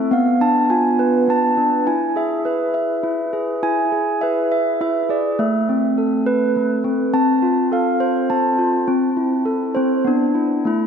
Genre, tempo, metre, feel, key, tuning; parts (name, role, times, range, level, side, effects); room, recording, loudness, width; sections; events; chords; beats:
children's music, lullaby; 103 BPM; 3/4; straight; A harmonic minor; A4 = 442 Hz
handbells; solo; 0.0-10.9 s; A3 to A5; -16 LUFS; equal; tape echo
wet lush hall reverb, RT60 2.3 s; dreamy mix soaked in reverb; -16 LUFS; side -7 dB against mid
0.0-10.6 A section
0.1 Bdim; 1.9 E; 5.4 Amadd9; 7.1 F; 8.9 Am; 10.0 E5
| 0.11 0.69 1.27 | 1.86 2.45 3.04 | 3.63 4.22 4.81 | 5.39 5.97 6.55 | 7.13 7.71 8.29 | 8.87 9.45 10.05 | 10.65